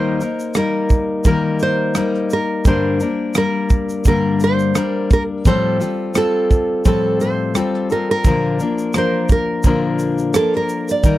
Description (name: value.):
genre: acoustic pop.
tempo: 86 BPM.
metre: 4/4.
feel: swing 55% on 16ths.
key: Bb major.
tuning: A4 = 440 Hz.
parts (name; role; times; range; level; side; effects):
nylon-string guitar; melody; 0.0-11.2 s; A4 to D5; -20 LUFS; right 3 dB; none.
fingerpicked steel-string acoustic guitar; accompaniment; 0.0-11.2 s; G2 to Bb4; -18 LUFS; left 3 dB; none.
natural country drum kit; drums; 0.2-11.2 s; kick drum, rim click, shaker; -16 LUFS; right 1 dB; none.
room: little or no reverb.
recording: dry, close 1970s-style studio recording.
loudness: -15 LUFS.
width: side -15 dB against mid.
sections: 0.0-11.2 A section.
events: none.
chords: 0.0 Eb; 2.7 Gm; 5.5 Fadd9/A; 8.2 Bb.